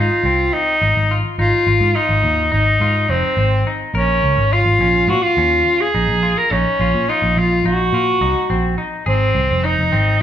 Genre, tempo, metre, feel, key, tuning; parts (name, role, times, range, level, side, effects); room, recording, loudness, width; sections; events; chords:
progressive instrumental, band music in an uneven meter; 211 BPM (eighths); 9/8; straight; Ab mixolydian; A4 = 441 Hz
clear tenor saxophone; melody; 0.0-10.2 s; C4 to Bb4; -16 LUFS; equal
semi-hollow electric guitar; arpeggios; 0.0-10.2 s; C4 to Bb4; -24 LUFS; left 2 dB
picked electric bass; bass; 0.0-10.2 s; F1 to Bb2; -18 LUFS; equal
wet large studio reverb, RT60 1.2 s; band playing live in one room; -14 LUFS; side -10 dB against mid
0.0-10.2 A section
0.0 Ab6; 4.0 Bbm; 6.5 Ebmadd9/Bb; 9.1 Ab6